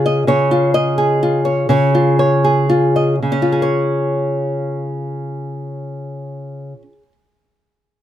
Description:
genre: folk, solo fingerstyle acoustic guitar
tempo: 38-44 BPM (dotted quarters)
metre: 6/8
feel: rubato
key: Db major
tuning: A4 = 439 Hz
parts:
  - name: nylon-string guitar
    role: solo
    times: 0.0-7.1 s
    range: Db3 to Eb5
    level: -14 LUFS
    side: equal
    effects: none
room: light reverb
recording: close, detailed microphones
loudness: -14 LUFS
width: side -11 dB against mid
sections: 0.0-3.2 A section; 3.2-6.3 B section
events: slowing down 0.0-3.2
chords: 0.0 Db

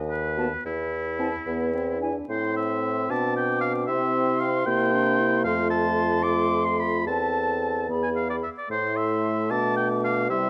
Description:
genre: quick classical-period movement for wind quintet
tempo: 75 BPM (dotted quarters)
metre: 6/8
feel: straight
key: A minor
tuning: A4 = 436 Hz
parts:
  - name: mellow bassoon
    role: bass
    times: 0.0-10.5 s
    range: D#2 to C3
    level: -29 LUFS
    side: equal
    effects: none
  - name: clear oboe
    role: second line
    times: 0.1-10.5 s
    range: E4 to D6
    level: -30 LUFS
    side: equal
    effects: none
  - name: mellow concert flute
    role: melody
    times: 0.4-10.5 s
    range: G#5 to D6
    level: -34 LUFS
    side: equal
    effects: none
  - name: mellow clarinet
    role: accompaniment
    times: 0.4-10.5 s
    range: D4 to A4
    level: -35 LUFS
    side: equal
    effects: none
  - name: warm French horn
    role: accompaniment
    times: 0.4-10.5 s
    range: G3 to D4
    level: -33 LUFS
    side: equal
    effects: none
room: light reverb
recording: close, detailed microphones, vinyl crackle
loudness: -25 LUFS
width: mono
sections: 0.0-2.3 A section; 2.3-10.5 B section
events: none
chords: 0.0 B/D#; 0.7 N.C.; 1.5 E5; 2.3 Am; 3.9 C; 4.7 C7; 5.5 F; 7.1 Am/E; 7.9 E; 8.7 Am

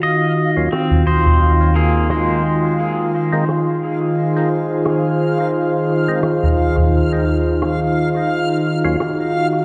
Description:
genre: ambient dub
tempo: 87 BPM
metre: 4/4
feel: swing 56% on 16ths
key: unclear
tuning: A4 = 440 Hz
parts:
  - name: airy breathy pad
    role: sustained chords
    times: 0.0-9.6 s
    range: Eb3 to C5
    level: -20 LUFS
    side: equal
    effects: chorus
  - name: pedal steel guitar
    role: arpeggios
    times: 0.0-4.5 s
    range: Ab3 to Eb5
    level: -24 LUFS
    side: equal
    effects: low-pass filter, dub echo
  - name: backwards swelling texture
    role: texture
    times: 0.0-9.6 s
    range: F5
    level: -28 LUFS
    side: equal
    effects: built-in reverb
  - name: soft-mallet drum kit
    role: drums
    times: 0.4-9.5 s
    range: cabasa, rim click, toms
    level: -21 LUFS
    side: equal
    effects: low-pass filter on toms, low-pass filter on snare, low-pass filter on perc, low-pass filter on room
  - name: percussive tonewheel organ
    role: stabs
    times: 0.6-9.0 s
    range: Eb2 to F4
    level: -31 LUFS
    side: equal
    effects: overdrive, slow rotary speaker, low-pass filter, dub echo
room: moderate spring reverb, RT60 2.7 s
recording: dark, warm production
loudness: -17 LUFS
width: mono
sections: 0.0-9.6 A section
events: filter sweep on analog synth pad 0.0-9.6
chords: 0.0 Ebmadd9; 2.8 Fm7/Eb; 8.3 Ebm9

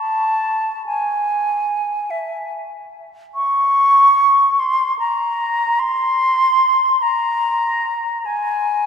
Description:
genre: classical, free, expressive piece for unaccompanied flute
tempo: 49 BPM (dotted quarters)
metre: 6/8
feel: rubato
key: unclear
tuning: A4 = 440 Hz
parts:
  - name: mellow silver concert flute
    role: solo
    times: 0.0-8.9 s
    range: E5 to Db6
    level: -15 LUFS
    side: equal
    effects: none
room: wet cathedral reverb, RT60 4.7 s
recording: recorded in a church or concert hall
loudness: -15 LUFS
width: side -7 dB against mid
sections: 0.0-8.9 A section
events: none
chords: none

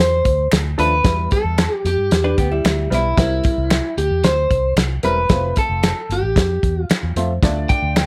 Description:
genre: uptempo 1960s-style soul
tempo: 113 BPM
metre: 4/4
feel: straight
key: unclear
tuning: A4 = 441 Hz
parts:
  - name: electric guitar at the edge of break-up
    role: melody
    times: 0.0-8.1 s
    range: E4 to G5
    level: -22 LUFS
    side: equal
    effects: none
  - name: vintage muted fingered electric bass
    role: bass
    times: 0.0-8.0 s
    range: E1 to G2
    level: -24 LUFS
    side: equal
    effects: none
  - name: warm soul drum kit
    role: drums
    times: 0.3-8.1 s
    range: hi-hat, kick drum, snare drum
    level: -20 LUFS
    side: equal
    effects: none
  - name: finger snaps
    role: percussion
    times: 0.5-8.1 s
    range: none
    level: -30 LUFS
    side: equal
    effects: none
  - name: warm upright piano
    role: accompaniment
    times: 0.8-8.0 s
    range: F3 to D5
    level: -27 LUFS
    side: equal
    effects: none
  - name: vintage hollow-body jazz guitar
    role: riff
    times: 2.2-3.1 s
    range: G3 to B4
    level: -26 LUFS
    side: equal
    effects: none
room: light reverb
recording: none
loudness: -18 LUFS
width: mono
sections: 0.0-8.1 A section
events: none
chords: 0.0 Dm; 1.1 Em; 3.2 C7; 5.3 F; 7.4 Dm

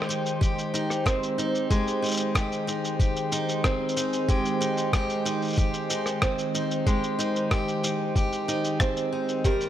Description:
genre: folktronica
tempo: 93 BPM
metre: 4/4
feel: straight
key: Ab major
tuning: A4 = 441 Hz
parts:
  - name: warbly tape-like pad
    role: sustained chords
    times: 0.0-9.7 s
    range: G2 to C5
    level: -30 LUFS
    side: equal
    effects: chorus, built-in reverb
  - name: picked steel-string acoustic guitar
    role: arpeggios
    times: 0.0-9.7 s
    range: G3 to Bb4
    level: -27 LUFS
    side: right 1 dB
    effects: tape echo
  - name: lo-fi sampler-style drum kit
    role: drums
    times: 0.0-9.7 s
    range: hi-hat, rim click, shaker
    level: -31 LUFS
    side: equal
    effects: none
  - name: electronic kick drum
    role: drums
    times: 0.4-9.6 s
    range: none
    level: -24 LUFS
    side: equal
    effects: none
  - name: small celesta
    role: second line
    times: 9.5-9.6 s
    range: G4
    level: -26 LUFS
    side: right 2 dB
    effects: none
room: light reverb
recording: none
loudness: -24 LUFS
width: side -11 dB against mid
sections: 0.0-9.7 A section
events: none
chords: 0.0 Abmaj7

